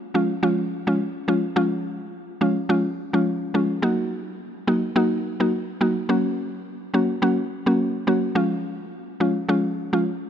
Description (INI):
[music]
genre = dancehall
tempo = 106 BPM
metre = 4/4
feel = swing 56% on 16ths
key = unclear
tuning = A4 = 442 Hz
[part]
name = mallet-like synth pluck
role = solo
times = 0.1-10.0 s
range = F3 to Gb4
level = -21 LUFS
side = equal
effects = chorus
[sound]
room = moderate plate reverb, RT60 3.5 s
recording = none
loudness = -20 LUFS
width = side -9 dB against mid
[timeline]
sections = 0.0-8.4 A section; 8.4-10.3 B section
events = none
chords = 0.0 Db; 3.8 Ebm; 6.1 Gb; 8.4 Db